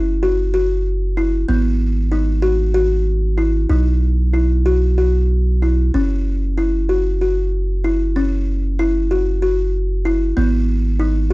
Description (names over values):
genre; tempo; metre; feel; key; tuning
contemporary instrumental, contemporary; 190 BPM (eighths); 7/8; straight; unclear; A4 = 439 Hz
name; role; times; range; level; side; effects
buzzing kalimba; arpeggios; 0.0-11.3 s; B3 to F#4; -19 LUFS; left 1 dB; none
punchy sub bass; bass; 0.0-11.3 s; F#1 to B1; -17 LUFS; equal; none
room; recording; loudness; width
light reverb; dark, warm production; -15 LUFS; side -20 dB against mid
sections
0.0-11.3 A section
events
none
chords
0.0 F#5; 1.5 G#m7; 3.7 B; 5.9 F#5; 10.4 G#m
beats
0.23 0.55 0.86 1.18 | 1.49 1.80 2.12 2.43 2.75 3.06 3.38 | 3.70 4.02 4.34 4.66 4.98 5.30 5.63 | 5.95 6.27 6.58 6.90 7.22 7.54 7.85 | 8.17 8.48 8.80 9.12 9.43 9.74 10.06 | 10.37 10.69 11.00 11.31